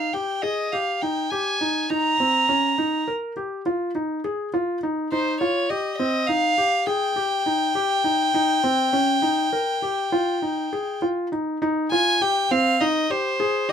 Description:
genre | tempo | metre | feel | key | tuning
contemporary instrumental, chamber music in an uneven meter | 204 BPM (eighths) | 11/8 | straight | Ab major | A4 = 440 Hz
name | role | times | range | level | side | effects
warm violin | melody | 0.0-13.7 s | C5 to Bb5 | -22 LUFS | equal | none
felt-muted upright piano | arpeggios | 0.0-13.7 s | C4 to Bb4 | -24 LUFS | equal | none
room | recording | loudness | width
light reverb | none | -20 LUFS | side -8 dB against mid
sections
0.0-11.6 A section; 11.6-13.7 B section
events
none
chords
0.0 Abmaj7(no3) (rootless); 11.6 Abmaj7

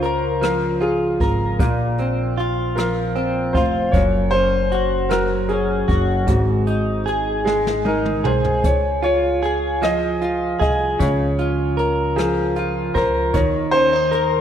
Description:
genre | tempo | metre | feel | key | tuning
six-eight pop ballad | 51 BPM (dotted quarters) | 6/8 | straight | Db major | A4 = 443 Hz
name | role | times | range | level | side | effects
clear baby grand piano | melody | 0.0-14.4 s | F4 to Eb5 | -22 LUFS | left 1 dB | tape echo
direct-recorded clean electric guitar | accompaniment | 0.0-14.4 s | Gb2 to Bb4 | -20 LUFS | equal | double-tracked left and right
upright bass | bass | 0.0-14.4 s | F1 to Eb2 | -25 LUFS | equal | none
jazz brush drum kit | drums | 0.0-14.3 s | hi-hat, kick drum, rim click, snare drum, toms | -24 LUFS | equal | none
room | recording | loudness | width
moderate lush hall reverb, RT60 2.0 s | rough home demo mix | -17 LUFS | side -9 dB against mid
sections
0.0-14.4 A section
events
drum fill 7.5-8.6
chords
0.0 Db6; 1.6 Bbsus2; 3.9 Gb5; 6.3 Ab; 8.6 Db; 11.0 Bbm7/Db; 13.3 Eb7(no3)

